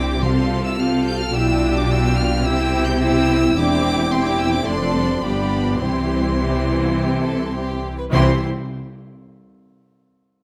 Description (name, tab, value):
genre	quick classical-period movement for symphony orchestra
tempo	106 BPM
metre	4/4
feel	straight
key	C major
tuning	A4 = 441 Hz
part	warm chamber violin section	melody	0.0-8.4 s	B5 to G6	-30 LUFS	equal	none
part	rich chamber violin section	second line	0.0-8.5 s	F4 to G5	-29 LUFS	equal	none
part	rich chamber viola section	accompaniment	0.0-8.4 s	E3 to F4	-27 LUFS	equal	none
part	dark French horn section	sustained chords	0.0-8.4 s	B3 to G4	-26 LUFS	equal	none
part	clear studio cello section	bass	0.0-8.4 s	E2 to C3	-26 LUFS	equal	none
part	rich chamber double bass section	bass	0.0-8.4 s	E1 to C2	-26 LUFS	equal	none
part	timpani	percussion	0.2-1.0, 8.1-8.4 s	C3	-26 LUFS	equal	none
room	moderate recital hall reverb, RT60 1.5 s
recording	none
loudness	-19 LUFS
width	mono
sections	0.0-8.1 A section; 8.1-10.4 B section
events	none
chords	0.2 F/C; 1.3 G7/B; 2.4 C; 3.6 C/E; 4.7 Dm7/F; 5.2 G7; 5.8 C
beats	0.23 0.79 | 1.34 1.90 2.45 3.00 | 3.56 4.11 4.67 5.23 | 5.80 6.38 6.96 7.54 | 8.13